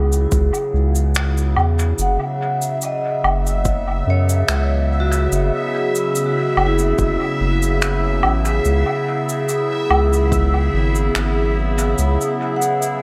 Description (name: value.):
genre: ambient dub.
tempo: 72 BPM.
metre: 4/4.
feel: straight.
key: unclear.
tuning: A4 = 438 Hz.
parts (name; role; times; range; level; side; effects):
warbly tape-like pad; sustained chords; 0.0-13.0 s; C#3 to G#4; -24 LUFS; equal; chorus, built-in reverb, phaser.
vibraphone with medium mallets; arpeggios; 0.0-13.0 s; E4 to F#5; -28 LUFS; equal; dub echo.
soft dub sub bass; bass; 0.0-12.2 s; F#1 to F#2; -20 LUFS; equal; none.
cabasa, finger snaps and woodblock; drums; 0.1-13.0 s; none; -26 LUFS; equal; dub echo.
electronic kick drum; drums; 0.3-10.5 s; none; -25 LUFS; equal; overdrive.
bubbling stepped-filter texture; texture; 2.0-13.0 s; E5; -29 LUFS; equal; chorus, built-in reverb.
room: moderate echo chamber reverb, RT60 2.2 s.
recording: none.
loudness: -18 LUFS.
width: mono.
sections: 0.0-13.0 A section.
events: none.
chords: 0.0 C#m7; 2.0 F#7(no3); 8.7 C#m7.